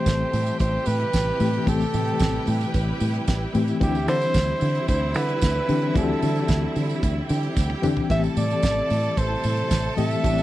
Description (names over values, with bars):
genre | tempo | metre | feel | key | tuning
disco | 112 BPM | 4/4 | straight | unclear | A4 = 439 Hz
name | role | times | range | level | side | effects
warm flugelhorn | melody | 0.0-10.4 s | G4 to E5 | -26 LUFS | right 1 dB | none
bright studio violin section | second line | 0.0-10.4 s | E4 to A5 | -33 LUFS | right 3 dB | none
reed electric piano | accompaniment | 0.0-10.4 s | E3 to G4 | -28 LUFS | left 5 dB | fast tremolo
clear symphonic string section | sustained chords | 0.0-10.4 s | C3 to B4 | -32 LUFS | right 2 dB | none
fingered electric bass | bass | 0.1-10.4 s | A1 to D3 | -25 LUFS | equal | none
damped 70s drum kit | drums | 0.1-10.4 s | hi-hat, kick drum, snare drum, toms | -25 LUFS | right 1 dB | none
tambourine | percussion | 0.1-10.4 s | none | -41 LUFS | right 18 dB | none
room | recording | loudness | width
little or no reverb | dry, close 1970s-style studio recording | -20 LUFS | side -15 dB against mid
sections
0.0-10.4 A section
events
drum fill 7.6-8.1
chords
0.0 Am7; 3.8 D9sus4; 8.1 Am7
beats
0.07 0.60 1.14 | 1.67 2.21 2.74 3.28 | 3.81 4.35 4.89 5.42 | 5.96 6.49 7.03 7.57 | 8.10 8.64 9.17 9.71 | 10.25